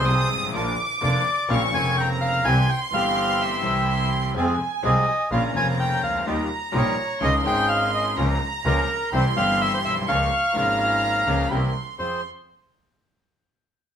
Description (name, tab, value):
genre	tango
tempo	126 BPM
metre	4/4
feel	rubato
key	F minor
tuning	A4 = 439 Hz
part	bandoneon	melody	0.0-12.2 s	Bb4 to Ab5	-23 LUFS	equal	none
part	warm chamber violin section	second line	0.0-12.2 s	Ab5 to Eb6	-27 LUFS	right 3 dB	none
part	clear concert grand piano	accompaniment	0.0-12.2 s	F1 to Ab4	-28 LUFS	left 4 dB	none
part	bandoneon	stabs	0.0-12.2 s	E3 to Bb4	-29 LUFS	right 2 dB	none
part	clear double bass	bass	0.0-12.2 s	F1 to F2	-25 LUFS	right 1 dB	none
room	moderate studio reverb, RT60 0.8 s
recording	band playing live in one room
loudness	-20 LUFS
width	side -8 dB against mid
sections	0.0-12.0 A section; 12.0-13.9 B section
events	none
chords	0.0 Fm; 0.6 Bb; 1.5 Bbmadd9; 2.5 C; 4.4 Fm; 5.3 Bbm; 6.3 Ebadd9; 7.2 Dbsus2; 8.2 Bbm/Db; 9.1 C; 10.1 Db6; 11.5 C7; 12.0 Fm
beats	0.08 | 0.55 1.03 1.50 1.98 | 2.45 2.93 3.41 3.88 | 4.36 4.84 5.32 5.79 | 6.27 6.74 7.22 7.69 | 8.17 8.64 9.12 9.60 | 10.07 10.55 11.03 11.51 | 11.99